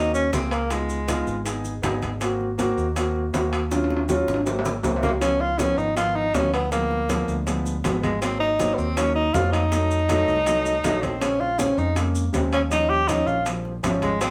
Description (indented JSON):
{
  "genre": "Afro-Cuban jazz",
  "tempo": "160 BPM",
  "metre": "4/4",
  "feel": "straight",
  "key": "Ab mixolydian",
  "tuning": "A4 = 440 Hz",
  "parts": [
    { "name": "breathy tenor saxophone", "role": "melody", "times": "0.0-1.5, 5.0-14.3 s", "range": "Ab3 to G4", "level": "-25 LUFS", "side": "equal", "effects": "none" },
    { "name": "dark baby grand piano", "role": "accompaniment", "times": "0.0-14.3 s", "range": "Db3 to Ab4", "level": "-29 LUFS", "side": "equal", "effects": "none" },
    { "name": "fingered electric bass", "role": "bass", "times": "0.0-14.3 s", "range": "Ab1 to F2", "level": "-30 LUFS", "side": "equal", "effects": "none" },
    { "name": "congas", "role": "percussion", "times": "0.1-14.3 s", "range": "none", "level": "-36 LUFS", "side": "equal", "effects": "none" },
    { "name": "maracas", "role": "percussion", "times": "0.1-14.3 s", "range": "none", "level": "-41 LUFS", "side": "equal", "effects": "none" },
    { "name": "bongos", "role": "percussion", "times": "0.3-14.3 s", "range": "none", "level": "-36 LUFS", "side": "equal", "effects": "none" },
    { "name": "timbales", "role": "percussion", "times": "0.3-14.3 s", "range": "none", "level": "-32 LUFS", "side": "equal", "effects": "none" }
  ],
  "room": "wet studio reverb, RT60 0.5 s",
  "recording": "band playing live in one room",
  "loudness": "-23 LUFS",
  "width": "mono",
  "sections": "0.0-14.3 A section",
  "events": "drum fill 3.7-5.2",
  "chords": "0.0 Ab7; 0.7 Db7; 2.2 Ab7; 3.7 Ebm7; 4.5 Ab7; 5.2 Db7; 6.7 Ddim7; 8.2 Ab7; 9.7 F7b9; 11.2 Bbm7; 12.7 Eb7"
}